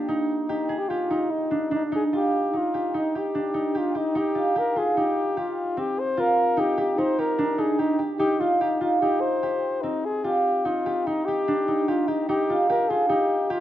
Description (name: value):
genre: contemporary instrumental, contemporary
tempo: 148 BPM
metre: 5/4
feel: straight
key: C minor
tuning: A4 = 444 Hz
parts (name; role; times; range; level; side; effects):
- concert harp; arpeggios; 0.0-13.6 s; Bb3 to Ab4; -24 LUFS; right 2 dB; none
- breathy flugelhorn; melody; 0.5-13.6 s; Eb4 to C5; -25 LUFS; left 2 dB; none
room: moderate recital hall reverb, RT60 1.8 s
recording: dark, warm production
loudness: -22 LUFS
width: side -12 dB against mid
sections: 0.0-2.1 A section; 2.1-13.6 B section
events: none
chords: 0.0 Bbadd11; 2.1 Cm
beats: | 0.08 0.48 0.89 1.30 1.71 | 2.12 2.53 2.94 3.35 3.76 | 4.17 4.57 4.97 5.38 5.78 | 6.18 6.59 6.99 7.40 7.80 | 8.20 8.61 9.01 9.42 9.84 | 10.25 10.66 11.07 11.48 11.88 | 12.29 12.70 13.10 13.51